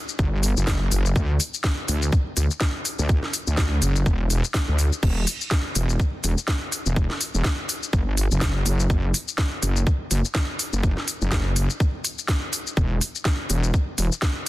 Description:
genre	bass house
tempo	124 BPM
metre	4/4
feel	swing 57% on 16ths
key	E minor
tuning	A4 = 439 Hz
part	garage drum kit	drums	0.1-14.5 s	crash cymbal, hi-hat, shaker, snare drum	-27 LUFS	left 1 dB	none
part	wobble bass	bass	0.2-14.1 s	E1 to D2	-22 LUFS	equal	chorus, overdrive, sidechain pumping
part	electronic kick drum	drums	0.2-14.3 s	none	-24 LUFS	equal	none
room	little or no reverb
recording	dense, heavily limited modern master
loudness	-21 LUFS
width	side -17 dB against mid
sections	0.0-14.5 A section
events	none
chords	none

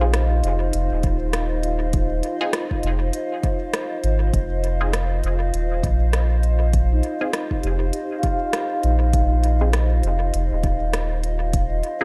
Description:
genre	ambient dub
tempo	100 BPM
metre	4/4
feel	swing 58% on 16ths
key	unclear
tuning	A4 = 440 Hz
part	warbly tape-like pad	sustained chords	0.0-12.0 s	F4 to F5	-30 LUFS	equal	chorus, built-in reverb
part	vibraphone with soft mallets	arpeggios	0.0-12.0 s	Eb4 to F5	-32 LUFS	equal	tape echo
part	filtered dub chord stab	stabs	0.0-12.0 s	C4 to Ab4	-31 LUFS	equal	phaser, dub echo
part	soft dub sub bass	bass	0.0-11.8 s	Eb1 to Bb1	-22 LUFS	equal	none
part	organic electronic drum kit	drums	0.1-12.0 s	hi-hat, rim click	-32 LUFS	equal	dub echo
part	electronic kick drum	drums	1.0-11.7 s	none	-26 LUFS	equal	none
room	light reverb, digital ambience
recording	none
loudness	-21 LUFS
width	mono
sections	0.0-12.0 A section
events	none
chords	0.0 F7(no3)

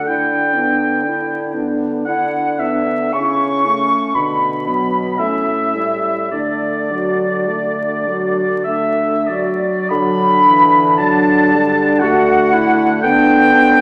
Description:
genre	classical, slow romantic movement for wind quintet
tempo	46-62 BPM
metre	3/4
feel	rubato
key	D major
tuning	A4 = 442 Hz
part	concert flute	melody	0.0-13.8 s	D5 to C#6	-21 LUFS	equal	none
part	warm oboe	second line	0.0-13.8 s	D5 to C#6	-21 LUFS	equal	none
part	warm clarinet	accompaniment	0.0-13.8 s	B3 to F#4	-22 LUFS	equal	none
part	dark bassoon	bass	0.0-13.8 s	A2 to D3	-25 LUFS	equal	none
part	mellow French horn	accompaniment	0.1-13.8 s	D3 to D4	-24 LUFS	equal	none
room	wet scoring stage reverb, RT60 1.8 s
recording	vinyl crackle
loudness	-15 LUFS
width	mono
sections	0.0-9.9 A section; 9.9-13.8 B section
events	none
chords	0.1 Em7/D; 3.1 A/C#; 4.1 Bm; 5.2 A7; 6.3 D; 13.0 Em7/D (rootless)

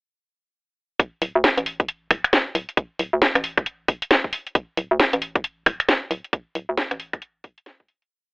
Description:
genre	UK garage, two-step garage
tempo	135 BPM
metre	4/4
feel	swing 62% on 16ths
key	unclear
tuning	A4 = 440 Hz
part	electronic kick drum	drums	1.0-7.9 s	none	-22 LUFS	equal	none
part	garage drum kit	drums	1.0-8.1 s	finger snaps, hi-hat, snare drum	-20 LUFS	equal	none
part	hollow knocking FM bass	bass	1.2-7.4 s	D1 to D2	-22 LUFS	equal	none
room	light reverb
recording	telephone sound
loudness	-20 LUFS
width	side -34 dB against mid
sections	1.0-8.1 groove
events	fade-out 5.7-8.1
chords	none

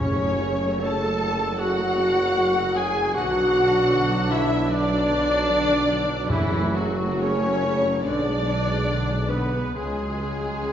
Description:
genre	classical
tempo	63-81 BPM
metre	4/4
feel	rubato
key	F# minor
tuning	A4 = 440 Hz
part	muted symphonic violin section	melody	0.0-10.7 s	E4 to A5	-32 LUFS	left 2 dB	none
part	muted symphonic violin section	second line	0.0-10.7 s	E4 to A5	-27 LUFS	left 2 dB	none
part	warm cor anglais	second line	0.0-10.7 s	E3 to A4	-31 LUFS	right 2 dB	none
part	muted symphonic viola section	accompaniment	0.0-10.7 s	C#3 to D4	-29 LUFS	right 1 dB	none
part	warm French horn section	sustained chords	0.0-10.7 s	E3 to A4	-28 LUFS	left 2 dB	none
part	clear tuba	bass	0.0-10.7 s	F#1 to C#2	-31 LUFS	right 2 dB	none
part	muted symphonic cello section	bass	0.0-10.7 s	E3 to A4	-29 LUFS	right 1 dB	none
part	muted symphonic double bass section	bass	0.0-10.7 s	F#1 to C#2	-30 LUFS	right 1 dB	none
part	timpani	percussion	0.0-1.2, 6.3-7.6 s	F#2	-31 LUFS	equal	none
room	wet recital hall reverb, RT60 1.5 s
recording	heard from further back in the room, nothing above 7.7 kHz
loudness	-20 LUFS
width	side -9 dB against mid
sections	0.0-10.7 A section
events	none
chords	0.0 F#m; 3.2 Bm; 6.3 F#m; 8.0 G#dim/B; 9.8 C#sus4

